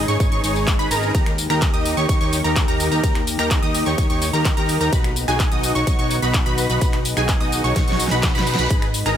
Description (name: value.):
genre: EDM, festival progressive house.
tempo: 127 BPM.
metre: 4/4.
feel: straight.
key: unclear.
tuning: A4 = 440 Hz.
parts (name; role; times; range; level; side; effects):
lush unison pad; sustained chords; 0.0-9.2 s; D#3 to B4; -29 LUFS; equal; chorus, sidechain pumping.
wide unison pluck; arpeggios; 0.0-9.2 s; G#5 to D#6; -25 LUFS; right 1 dB; sidechain pumping, ping-pong delay.
dense compressed supersaw; riff; 0.0-9.2 s; D#4 to D#5; -23 LUFS; equal; sidechain pumping, ping-pong delay.
fat analog bass; bass; 0.0-9.2 s; G#1 to D#2; -24 LUFS; equal; sidechain pumping.
big-room dance drum kit; drums; 0.1-9.2 s; finger snaps, handclaps, hi-hat, ride cymbal, snare drum, tambourine; -25 LUFS; equal; none.
electronic kick drum; drums; 0.2-8.8 s; none; -20 LUFS; equal; none.
reverse cymbal; sound effects; 8.1-8.7 s; none; -31 LUFS; right 4 dB; none.
room: light reverb, digital ambience.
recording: none.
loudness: -16 LUFS.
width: side -10 dB against mid.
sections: 0.0-9.2 A section.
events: drum fill 7.8-8.7; reverse cymbal 8.1-8.7.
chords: 0.0 G#m; 1.1 D#; 4.9 B.